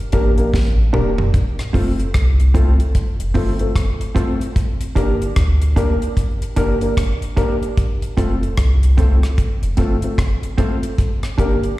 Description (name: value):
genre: roots reggae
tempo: 75 BPM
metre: 4/4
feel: swing 62% on 16ths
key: F major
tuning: A4 = 440 Hz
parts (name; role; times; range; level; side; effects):
- mellow electric guitar; accompaniment; 0.1-11.6 s; C4 to Bb4; -26 LUFS; right 4 dB; tape echo, slapback echo
- dark upright piano; stabs; 0.1-11.6 s; A3 to Bb4; -24 LUFS; left 2 dB; slapback echo
- warm sub bass; bass; 0.1-11.8 s; E1 to D2; -16 LUFS; equal; none
- deep reggae drum kit; drums; 0.1-11.8 s; hi-hat, kick drum, rim click, snare drum, toms; -19 LUFS; equal; none
room: light reverb, studio ambience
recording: live gig heard through the venue's PA, recital hall reverb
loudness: -15 LUFS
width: side -17 dB against mid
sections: 0.0-11.8 A section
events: drum fill 0.5-1.3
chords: 0.0 Gm; 1.3 F; 4.6 Gm; 7.8 F; 11.0 Gm